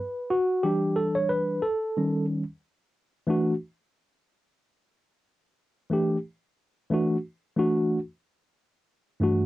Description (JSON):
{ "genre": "hip hop", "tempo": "91 BPM", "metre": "4/4", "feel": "swing 57% on 16ths", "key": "D major", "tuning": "A4 = 440 Hz", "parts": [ { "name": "mellow tine electric piano", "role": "solo", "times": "0.0-9.5 s", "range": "G2 to C#5", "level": "-23 LUFS", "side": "equal", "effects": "medium stereo tremolo, cassette tape" } ], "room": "moderate booth ambience, RT60 0.2 s", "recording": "home recording on cassette", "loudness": "-24 LUFS", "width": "side -16 dB against mid", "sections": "0.0-3.3 A section; 3.3-9.5 B section", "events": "tine electric piano solo 0.0-3.3", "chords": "0.0 Gmaj7 (rootless); 0.6 Em7; 2.0 Eb7; 3.3 D; 5.9 A7sus4; 7.2 Dadd9; 8.6 Gsus2" }